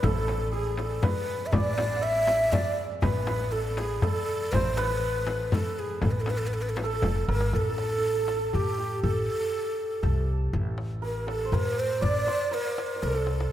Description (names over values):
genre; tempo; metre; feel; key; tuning
Persian modal ensemble; 120 BPM; 3/4; straight; A avaz esfahan, A dastgah shur from 7.5 s; A4 = 440 Hz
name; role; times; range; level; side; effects
breathy mellow ney; melody; 0.0-13.5 s; G4 to E5; -29 LUFS; equal; none
santur; second line; 0.0-13.5 s; G4 to F#5-50c; -34 LUFS; right 4 dB; none
upright bass; bass; 0.0-13.5 s; F#1-50c to A2; -29 LUFS; equal; none
frame drum; percussion; 0.0-7.1 s; none; -32 LUFS; left 2 dB; none
tombak; percussion; 0.0-13.5 s; none; -32 LUFS; left 1 dB; none
room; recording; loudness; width
moderate concert hall reverb, RT60 2.5 s; none; -25 LUFS; side -12 dB against mid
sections
0.0-7.5 A section; 7.5-13.5 B section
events
drum fill 7.0-7.5, 13.0-13.5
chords
none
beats
| 0.03 0.53 1.03 | 1.53 2.03 2.53 | 3.03 3.53 4.03 | 4.53 5.03 5.53 | 6.03 6.53 7.03 | 7.53 8.03 8.53 | 9.03 9.53 10.03 | 10.53 11.03 11.53 | 12.03 12.53 13.03